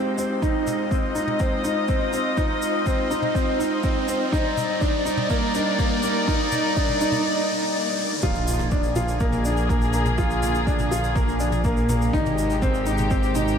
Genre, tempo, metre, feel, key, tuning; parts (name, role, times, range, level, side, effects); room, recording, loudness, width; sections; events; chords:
piano and strings electronica; 123 BPM; 4/4; straight; A4 = 440 Hz
dark chamber string section; sustained chords; 0.0-13.6 s; C3 to Eb5; -27 LUFS; left 1 dB; sidechain pumping
clear grand piano; riff; 0.0-13.6 s; Bb3 to F4; -24 LUFS; equal; wide subtle chorus, ping-pong delay
riser, swell and impact; sound effects; 0.1-10.2 s; -32 LUFS; equal
shaker and toms; drums; 0.2-13.6 s; -34 LUFS; left 1 dB
electronic kick drum; drums; 0.4-13.2 s; -25 LUFS; equal; overdrive
dark detuned saw bass; bass; 8.2-13.6 s; Ab1 to Bb1; -25 LUFS; equal; sidechain pumping
wet huge ambient reverb, RT60 8.4 s; dreamy mix soaked in reverb; -20 LUFS; side -7 dB against mid
0.0-8.2 A section; 8.2-13.6 B section
build-up 0.0-8.2; riser 0.1-8.2; break 7.3-8.2; swell 7.3-8.2; drop 8.2-13.6; impact 8.2-10.2
0.4 Fm7; 4.3 Ebmaj7; 8.2 Bb7; 12.1 Abmaj7